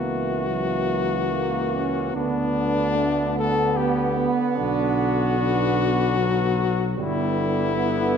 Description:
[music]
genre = classical, hymn-like piece for brass band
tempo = 74 BPM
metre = 3/4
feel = rubato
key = B minor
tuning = A4 = 437 Hz
[part]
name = mellow flugelhorn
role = melody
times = 0.0-8.2 s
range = D4 to A4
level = -25 LUFS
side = left 6 dB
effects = none
[part]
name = mellow French horn section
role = second line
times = 0.0-8.2 s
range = A#3 to B3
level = -28 LUFS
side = right 7 dB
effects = none
[part]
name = mellow euphonium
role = accompaniment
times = 0.0-8.2 s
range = D3 to E3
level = -30 LUFS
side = equal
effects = none
[part]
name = mellow trombone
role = accompaniment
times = 0.0-8.2 s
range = F#3 to D4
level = -27 LUFS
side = right 3 dB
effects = none
[part]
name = mellow tuba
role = bass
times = 0.0-8.2 s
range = G1 to D2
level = -27 LUFS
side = equal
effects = none
[sound]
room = moderate concert hall reverb, RT60 2.3 s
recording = none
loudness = -20 LUFS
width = side -7 dB against mid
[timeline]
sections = 0.0-8.2 A section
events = none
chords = 0.0 F#7/C#; 2.2 Bm/D; 4.6 Bm; 7.0 Em7/G

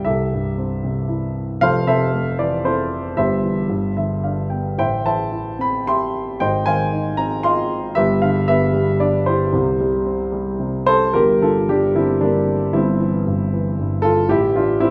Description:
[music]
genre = classical, lyrical solo piano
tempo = 114 BPM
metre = 3/4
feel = rubato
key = C major, G dorian from 11.1 s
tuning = A4 = 440 Hz
[part]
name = dark grand piano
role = solo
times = 0.0-14.9 s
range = F1 to C6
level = -19 LUFS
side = equal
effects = none
[sound]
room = moderate recital hall reverb, RT60 1.3 s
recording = none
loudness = -19 LUFS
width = mono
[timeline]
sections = 0.0-11.1 A section; 11.1-14.9 B section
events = grand piano fill 3.7-4.8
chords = 0.1 Am7/C; 1.6 Fmaj7; 3.2 C/G; 3.7 G; 4.8 Am7; 6.4 Ab6; 8.0 G; 9.5 C; 11.1 Gm; 12.7 C/G; 14.3 Am

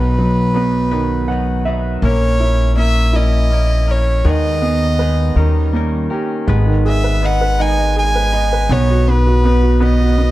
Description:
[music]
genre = six-eight pop ballad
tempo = 54 BPM (dotted quarters)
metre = 6/8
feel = straight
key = G# minor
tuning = A4 = 437 Hz
[part]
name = rich violin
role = melody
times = 0.0-10.3 s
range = B4 to G#5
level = -20 LUFS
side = right 1 dB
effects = none
[part]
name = clear grand piano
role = accompaniment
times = 0.0-10.3 s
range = B2 to F#5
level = -19 LUFS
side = right 3 dB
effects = none
[part]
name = direct-recorded clean electric guitar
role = arpeggios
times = 0.0-10.3 s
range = G#2 to B4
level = -26 LUFS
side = left 6 dB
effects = tape echo
[part]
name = upright bass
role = bass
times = 0.0-10.3 s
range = G#1 to D#2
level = -15 LUFS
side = equal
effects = none
[sound]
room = light reverb, small room ambience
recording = dark, warm production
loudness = -13 LUFS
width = side -16 dB against mid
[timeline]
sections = 0.0-6.5 A section; 6.5-10.3 B section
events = grand piano fill 0.9-2.0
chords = 0.0 B; 2.0 A#dim; 4.3 G#m/D#; 5.4 D#7; 6.5 G#m; 8.7 B

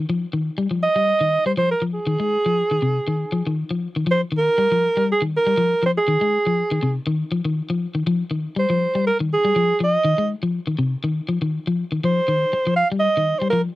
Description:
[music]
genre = afrobeat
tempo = 121 BPM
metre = 4/4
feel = swing 54% on 16ths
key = F minor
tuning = A4 = 440 Hz
[part]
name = electric guitar at the edge of break-up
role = arpeggios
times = 0.0-13.7 s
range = C3 to Ab3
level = -22 LUFS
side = left 2 dB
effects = spring reverb
[part]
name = warm alto saxophone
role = melody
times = 0.8-13.6 s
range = Ab4 to F5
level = -18 LUFS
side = right 2 dB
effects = none
[sound]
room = light reverb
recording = dry, close 1970s-style studio recording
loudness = -18 LUFS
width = side -16 dB against mid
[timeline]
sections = 0.0-4.1 A section; 4.1-13.8 B section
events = none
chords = 0.0 Fm9; 4.1 F7sus2

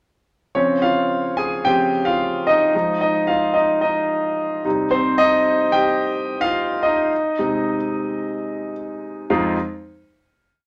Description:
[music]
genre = piano-driven pop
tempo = 110 BPM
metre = 4/4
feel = straight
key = F minor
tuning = A4 = 440 Hz
[part]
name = clear grand piano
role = solo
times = 0.5-9.6 s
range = F2 to Ab5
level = -20 LUFS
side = equal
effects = none
[sound]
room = wet studio ambience, RT60 0.5 s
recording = none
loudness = -20 LUFS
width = mono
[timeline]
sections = 0.6-9.3 verse; 9.3-10.7 final chord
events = grand piano solo 0.6-9.3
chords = 0.6 Dbmaj7; 2.7 Fm7; 4.7 Cm; 9.3 Fm7

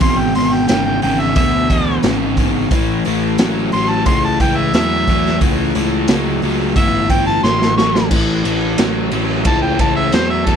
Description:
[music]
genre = blues rock power trio and southern rock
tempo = 89 BPM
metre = 4/4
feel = straight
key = A mixolydian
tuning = A4 = 440 Hz
[part]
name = mellow harmonica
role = melody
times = 0.0-10.6 s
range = A4 to C#6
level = -18 LUFS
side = equal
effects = overdrive
[part]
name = crunchy overdriven guitar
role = riff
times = 0.0-10.6 s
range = E2 to F#3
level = -17 LUFS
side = left 1 dB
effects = none
[part]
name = fuzz picked electric bass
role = bass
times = 0.0-10.6 s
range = G1 to E2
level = -21 LUFS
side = equal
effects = overdrive
[part]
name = raw garage drum kit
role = drums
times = 0.0-10.6 s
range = crash cymbal, hi-hat, kick drum, ride cymbal, snare drum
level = -18 LUFS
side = equal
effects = none
[sound]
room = little or no reverb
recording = none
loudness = -13 LUFS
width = side -7 dB against mid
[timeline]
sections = 0.0-8.1 A section; 8.1-10.6 A section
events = harmonica solo 0.0-10.6; drum fill 7.4-8.1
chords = 0.0 E7; 2.7 A

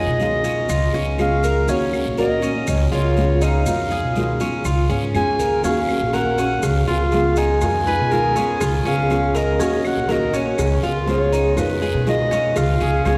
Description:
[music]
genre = latin, Cuban son and guajira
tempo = 121 BPM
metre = 4/4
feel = straight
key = unclear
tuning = A4 = 440 Hz
[part]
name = warm clarinet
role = melody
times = 0.0-13.2 s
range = Cb5 to Ab5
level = -25 LUFS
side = equal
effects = none
[part]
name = nylon-string guitar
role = accompaniment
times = 0.0-13.2 s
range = Cb3 to Ab4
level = -25 LUFS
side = equal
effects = none
[part]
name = Cuban tres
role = arpeggios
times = 0.0-13.2 s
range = Db4 to Bb4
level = -28 LUFS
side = equal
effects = none
[part]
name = upright bass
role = bass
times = 0.0-13.2 s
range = Bb1 to Cb3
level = -24 LUFS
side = equal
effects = none
[part]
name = guiro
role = percussion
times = 0.2-13.2 s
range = none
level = -40 LUFS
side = equal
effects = none
[part]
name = maracas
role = percussion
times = 0.2-13.2 s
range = none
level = -42 LUFS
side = equal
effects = none
[part]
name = claves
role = percussion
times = 0.7-13.2 s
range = none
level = -43 LUFS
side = equal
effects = none
[part]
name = cowbell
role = percussion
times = 5.6-13.2 s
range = none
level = -31 LUFS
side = equal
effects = none
[part]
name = warm trumpet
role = second line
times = 7.9-8.7, 12.8-13.2 s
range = Ab4 to Db5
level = -32 LUFS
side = equal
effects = none
[sound]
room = wet cathedral reverb, RT60 4.2 s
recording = recorded in a church or concert hall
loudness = -19 LUFS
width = mono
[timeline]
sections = 0.0-13.2 A section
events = none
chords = 0.0 Fm7b5; 0.7 Db7; 1.7 Ebm7; 2.7 Db7; 3.7 Fm7b5; 4.7 Db7; 5.6 Ebm7; 6.6 Db7; 7.6 Fm7b5; 8.6 Db7; 9.6 Ebm7; 10.6 Db7; 11.6 Fm7b5; 12.6 Db7

